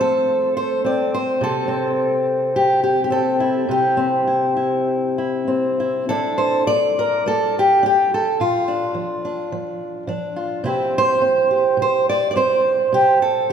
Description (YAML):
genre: folk, solo fingerstyle acoustic guitar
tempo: 105 BPM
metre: 4/4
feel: rubato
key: unclear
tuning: A4 = 440 Hz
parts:
  - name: fingerpicked steel-string acoustic guitar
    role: solo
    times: 0.0-13.5 s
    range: Bb2 to D5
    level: -16 LUFS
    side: equal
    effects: none
room: wet church reverb, RT60 2.8 s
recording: recorded in a church or concert hall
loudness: -16 LUFS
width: side -7 dB against mid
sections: 0.0-6.1 A section; 6.1-13.5 B section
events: none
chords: 0.0 F (rootless); 1.4 C; 6.1 Dsus2; 8.4 Bb; 10.6 C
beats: 0.29 0.85 | 1.41 1.97 2.54 3.11 | 3.69 4.27 4.86 5.48 | 6.08 6.67 7.25 7.82 | 8.39 8.95 9.51 10.07 | 10.64 11.22 11.79 12.36 | 12.94 13.51